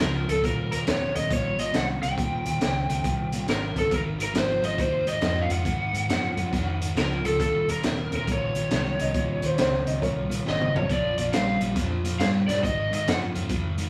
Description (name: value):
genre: electric blues shuffle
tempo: 138 BPM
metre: 4/4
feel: swing 65% on 8ths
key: Eb mixolydian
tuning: A4 = 440 Hz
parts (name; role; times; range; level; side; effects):
- lead guitar through a small cranked amp; melody; 0.0-13.2 s; A4 to G5; -30 LUFS; equal; overdrive
- overdriven semi-hollow guitar; riff; 0.0-13.9 s; Eb2 to G3; -32 LUFS; equal; none
- vintage muted fingered electric bass; bass; 0.0-13.9 s; Eb1 to Ab2; -33 LUFS; equal; none
- crunchy breakbeat drum kit; drums; 0.0-13.8 s; hi-hat, kick drum, snare drum, toms; -31 LUFS; equal; none
- warm upright piano; second line; 9.0-10.4 s; Bb4 to Eb5; -31 LUFS; equal; none
room: wet studio reverb, RT60 0.7 s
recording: band playing live in one room, studio reverb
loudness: -25 LUFS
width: mono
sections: 0.0-13.9 A section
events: drum fill 10.4-10.9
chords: 0.4 Eb; 3.9 Ab5; 7.4 Eb5; 10.9 Bb5; 12.6 Ab5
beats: 0.00 | 0.44 0.87 1.31 1.75 | 2.18 2.62 3.05 3.49 | 3.92 4.36 4.79 5.23 | 5.66 6.10 6.53 6.97 | 7.40 7.84 8.27 8.71 | 9.14 9.58 10.01 10.45 | 10.88 11.32 11.76 12.19 | 12.62 13.06 13.49